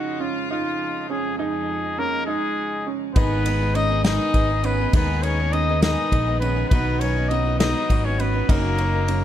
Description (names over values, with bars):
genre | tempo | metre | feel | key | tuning
indie folk with a building arrangement | 68 BPM (dotted quarters) | 6/8 | straight | unclear | A4 = 440 Hz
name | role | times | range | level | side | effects
mellow trumpet | melody | 0.0-9.2 s | E#4 to D#5 | -26 LUFS | left 2 dB | none
rich chamber string section | sustained chords | 0.0-9.2 s | E#2 to G#4 | -33 LUFS | equal | none
warm upright piano | arpeggios | 0.0-9.2 s | C#4 to D#4 | -28 LUFS | right 6 dB | slapback echo
warm trumpet | second line | 2.0-9.2 s | G#3 to D#4 | -32 LUFS | left 6 dB | none
felt-muted upright piano | accompaniment | 3.2-9.2 s | F#1 to F#5 | -34 LUFS | equal | none
picked swing-style acoustic guitar | accompaniment | 3.2-9.2 s | F#2 to G#4 | -32 LUFS | left 7 dB | none
fingered electric bass | bass | 3.2-9.2 s | F#1 to D#2 | -23 LUFS | equal | none
unplugged drum kit | drums | 3.2-9.2 s | kick drum, ride cymbal, snare drum | -23 LUFS | equal | none
room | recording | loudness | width
light reverb | dark, warm production | -19 LUFS | side -11 dB against mid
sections
0.0-9.2 A section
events
none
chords
0.0 C#/E#; 3.2 G#m; 6.7 B; 8.5 F#